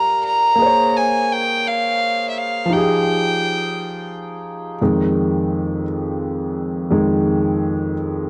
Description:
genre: R&B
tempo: 57 BPM (dotted quarters)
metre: 6/8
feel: straight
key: unclear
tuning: A4 = 440 Hz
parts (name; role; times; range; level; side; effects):
- rich violin; melody; 0.0-4.1 s; E5 to Bb5; -20 LUFS; equal; cassette tape, tape echo
- warm concert grand piano; accompaniment; 0.0-8.3 s; F2 to Db5; -22 LUFS; equal; cassette tape
room: moderate spring reverb, RT60 2.0 s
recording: home recording on cassette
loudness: -19 LUFS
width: mono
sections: 0.0-4.8 A section; 4.8-8.3 B section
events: grand piano solo 4.8-8.3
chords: 0.0 Gm9; 0.6 Bbm9; 2.7 Fm9; 4.8 Fm7

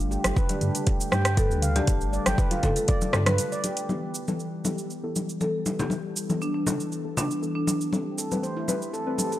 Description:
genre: afro house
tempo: 119 BPM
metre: 4/4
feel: straight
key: E minor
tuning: A4 = 440 Hz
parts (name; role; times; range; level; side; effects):
- warm analog pad; sustained chords; 0.0-9.4 s; D3 to A4; -33 LUFS; left 1 dB; chorus, sidechain pumping
- warm sub bass; bass; 0.0-3.4 s; G1 to G2; -27 LUFS; equal; tube saturation, sidechain pumping
- afro-pop drum kit; drums; 0.0-9.4 s; hi-hat, rim click, shaker, toms; -29 LUFS; right 1 dB; none
- handpan; arpeggios; 0.1-3.8, 8.2-9.4 s; D4 to G5; -32 LUFS; right 1 dB; sidechain pumping, analog delay
- congas; percussion; 0.2-9.3 s; none; -30 LUFS; left 2 dB; none
- electronic kick drum; drums; 0.4-3.0 s; none; -24 LUFS; equal; none
- marimba with medium mallets; melody; 1.4-7.8 s; D4 to B4; -32 LUFS; equal; analog delay
- deep mellow chord stab; stabs; 3.9-9.4 s; E3 to B4; -33 LUFS; left 3 dB; chorus, cassette tape, sidechain pumping, analog delay
room: light reverb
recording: dry, gritty hardware recording, transformer saturation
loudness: -24 LUFS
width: side -14 dB against mid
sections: 0.0-3.9 A section; 3.9-9.4 B section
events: break 3.4-3.9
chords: 0.0 Gsus2; 3.9 Em; 7.9 Am7

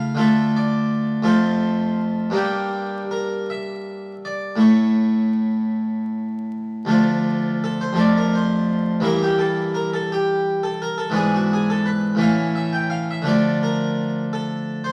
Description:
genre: classical, baroque-style suite movement for harpsichord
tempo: 52-58 BPM (dotted quarters)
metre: 6/8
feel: rubato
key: D minor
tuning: A4 = 441 Hz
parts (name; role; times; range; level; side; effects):
- harpsichord; solo; 0.0-14.9 s; D2 to G5; -21 LUFS; equal; none
room: wet stone room reverb, RT60 1.1 s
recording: vinyl crackle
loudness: -21 LUFS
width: mono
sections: 0.0-6.9 A section; 6.9-14.9 A section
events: none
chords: 0.2 Dm; 1.3 F; 2.4 Gm; 4.6 A; 6.9 Dm; 8.0 Dm/F; 9.0 Edim/G; 11.2 E7/G#; 12.2 A; 13.3 Dm

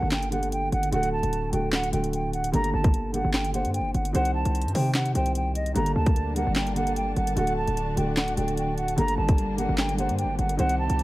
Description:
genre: hip hop, trap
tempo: 149 BPM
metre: 4/4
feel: half-time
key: G harmonic minor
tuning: A4 = 440 Hz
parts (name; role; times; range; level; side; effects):
- mellow silver concert flute; melody; 0.0-11.0 s; Eb5 to Bb5; -29 LUFS; right 1 dB; none
- felt-muted upright piano; accompaniment; 0.0-11.0 s; D3 to C5; -29 LUFS; right 1 dB; none
- hard-hitting 808-style bass; bass; 0.0-11.0 s; D1 to C3; -28 LUFS; equal; none
- trap drum kit; drums; 0.1-11.0 s; handclaps, hi-hat, kick drum, snare drum; -27 LUFS; equal; none
- dark studio string section; sustained chords; 5.8-11.0 s; C3 to A5; -34 LUFS; left 2 dB; none
room: small room ambience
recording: vinyl crackle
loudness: -23 LUFS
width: side -17 dB against mid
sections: 0.0-11.0 A section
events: none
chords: 0.0 Gmadd9; 0.9 D; 2.5 Gmadd9; 4.1 Cm; 5.8 Gmadd9; 7.4 D; 9.0 Gmadd9

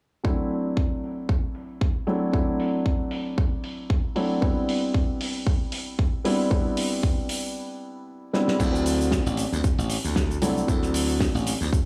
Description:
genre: nu-disco, nu disco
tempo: 115 BPM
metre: 4/4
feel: swing 55% on 16ths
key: unclear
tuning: A4 = 440 Hz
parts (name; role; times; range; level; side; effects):
- dark baby grand piano; accompaniment; 0.2-11.9 s; F#3 to E4; -29 LUFS; equal; sidechain pumping, tape echo
- electronic kick drum; drums; 0.2-11.8 s; none; -27 LUFS; equal; small room ambience
- damped 70s drum kit; drums; 0.5-11.8 s; crash cymbal, hi-hat, shaker, snare drum; -34 LUFS; equal; low-pass filter on hats, small room ambience, low-pass filter on cymbals, low-pass filter on snare, low-pass filter on perc, low-pass filter on room
- glassy slap bass; bass; 8.6-11.7 s; A1 to D2; -28 LUFS; equal; none
room: light reverb, small room ambience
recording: studio reverb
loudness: -25 LUFS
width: mono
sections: 0.2-8.6 A section; 8.6-11.9 B section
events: filter sweep on drum 0.2-8.6; break 7.6-8.6; drum fill 8.3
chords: 0.2 D7; 4.4 Cmaj7; 8.6 D7

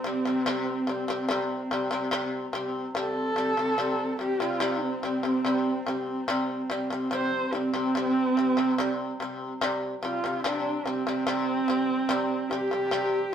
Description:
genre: mongolian traditional, Mongolian folk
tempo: 72 BPM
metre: 4/4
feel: straight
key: C zhi mode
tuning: A4 = 437 Hz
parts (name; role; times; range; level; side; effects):
- dark horsehead fiddle; melody; 0.0-13.3 s; C4 to C5; -28 LUFS; right 2 dB; none
- shamisen; arpeggios; 0.0-13.3 s; C3 to G3; -29 LUFS; left 2 dB; none
- rich horsehead fiddle; drone; 0.0-9.7 s; C4; -33 LUFS; equal; none
room: wet studio reverb, RT60 0.8 s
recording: band playing live in one room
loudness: -25 LUFS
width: side -8 dB against mid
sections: 0.0-9.6 A section; 9.6-13.3 B section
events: none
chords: 0.0 C5

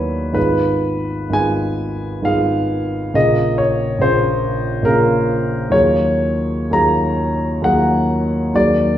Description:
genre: classical, impressionist solo piano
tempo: 57-71 BPM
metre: 3/4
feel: rubato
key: Eb minor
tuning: A4 = 439 Hz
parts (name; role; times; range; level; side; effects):
- warm grand piano; solo; 0.0-9.0 s; Ab1 to Bb5; -15 LUFS; equal; none
room: wet recital hall reverb, RT60 1.3 s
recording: heard from further back in the room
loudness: -15 LUFS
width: side -11 dB against mid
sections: 0.0-9.0 A section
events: none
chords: 0.4 Abm6; 3.1 Bbm9; 5.7 Ebm11

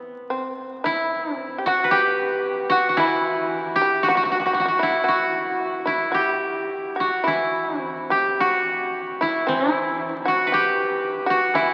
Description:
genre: japanese traditional, Japanese chamber music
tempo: 52-59 BPM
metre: 2/4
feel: rubato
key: E hirajoshi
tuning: A4 = 440 Hz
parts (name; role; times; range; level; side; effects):
- koto; melody; 0.0-11.7 s; B3 to B4; -23 LUFS; equal; none
- shamisen; second line; 0.0-11.7 s; B3 to G4; -28 LUFS; equal; none
- koto; accompaniment; 3.0-11.7 s; E3; -36 LUFS; equal; none
room: wet cathedral reverb, RT60 5.5 s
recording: very old 78 rpm record, vinyl crackle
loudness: -22 LUFS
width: mono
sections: 0.0-11.7 A section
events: none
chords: none

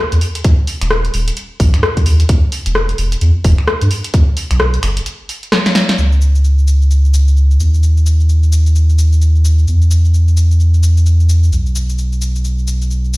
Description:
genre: UK garage, two-step garage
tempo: 130 BPM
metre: 4/4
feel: swing 60% on 16ths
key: unclear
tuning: A4 = 443 Hz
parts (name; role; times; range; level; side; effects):
- soft dub sub bass; bass; 0.1-13.2 s; D#1 to G#2; -10 LUFS; equal; sidechain pumping
- punchy analog drum machine; drums; 0.1-13.2 s; cabasa, finger snaps, hi-hat, rim click, snare drum; -19 LUFS; left 1 dB; none
- electronic kick drum; drums; 0.4-4.2 s; none; -10 LUFS; equal; none
room: little or no reverb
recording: played on a big sound system in a bare room, large studio reverb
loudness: -10 LUFS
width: side -21 dB against mid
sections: 0.0-6.0 A section; 6.0-13.2 B section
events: drum fill 5.5-6.0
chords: none

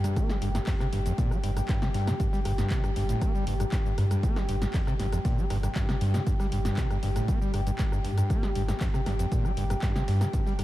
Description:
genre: acid house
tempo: 118 BPM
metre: 4/4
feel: straight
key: G minor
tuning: A4 = 440 Hz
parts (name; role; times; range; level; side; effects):
- dark analog pad; sustained chords; 0.0-10.6 s; G4 to G5; -36 LUFS; left 1 dB; chorus, sidechain pumping
- overdriven acid bass; riff; 0.0-10.6 s; F2 to Bb3; -30 LUFS; equal; distortion, wide subtle chorus, sidechain pumping
- warm sub bass; bass; 0.0-10.6 s; G1 to G2; -29 LUFS; equal; sidechain pumping
- punchy analog drum machine; drums; 0.0-10.6 s; handclaps, hi-hat, rim click, shaker, snare drum; -37 LUFS; equal; none
- dusty soul sampler-style drum kit; drums; 0.2-10.6 s; hi-hat, snare drum; -52 LUFS; right 1 dB; none
- electronic kick drum; drums; 0.2-10.4 s; none; -28 LUFS; equal; none
room: light reverb, digital ambience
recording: none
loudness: -25 LUFS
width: side -15 dB against mid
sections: 0.0-10.6 A section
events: none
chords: none

